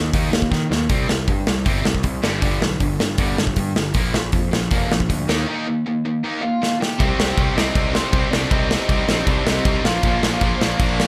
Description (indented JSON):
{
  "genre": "punk rock",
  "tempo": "158 BPM",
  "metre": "4/4",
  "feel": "straight",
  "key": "C minor",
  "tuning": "A4 = 440 Hz",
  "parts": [
    { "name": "distorted electric guitar", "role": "riff", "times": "0.0-11.1 s", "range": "G2 to Eb4", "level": "-28 LUFS", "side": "equal", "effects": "overdrive" },
    { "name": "raw garage guitar", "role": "riff", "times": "0.0-11.1 s", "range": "G2 to Eb4", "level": "-29 LUFS", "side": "equal", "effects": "overdrive" },
    { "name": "fuzz picked electric bass", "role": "bass", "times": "0.0-11.0 s", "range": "F1 to Eb3", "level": "-26 LUFS", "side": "equal", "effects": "overdrive" },
    { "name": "big rock drum kit", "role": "drums", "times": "0.1-11.1 s", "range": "crash cymbal, hi-hat, kick drum, snare drum", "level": "-23 LUFS", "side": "equal", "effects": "none" },
    { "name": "biting lead guitar", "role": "melody", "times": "6.4-11.1 s", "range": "Bb3 to G5", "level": "-28 LUFS", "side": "equal", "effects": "overdrive" },
    { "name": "high-gain distorted guitar", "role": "riff", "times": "7.0-11.1 s", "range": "Bb2 to C4", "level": "-31 LUFS", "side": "equal", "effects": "none" }
  ],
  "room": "light reverb",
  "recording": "none",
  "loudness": "-20 LUFS",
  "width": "mono",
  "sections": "0.0-7.0 A section; 7.0-11.1 B section",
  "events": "drum fill 0.5-0.9, 6.6-7.0",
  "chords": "0.0 Eb5; 0.9 C5; 2.2 G5; 4.0 Bb5; 5.3 Eb; 7.0 Cm; 9.8 Bb"
}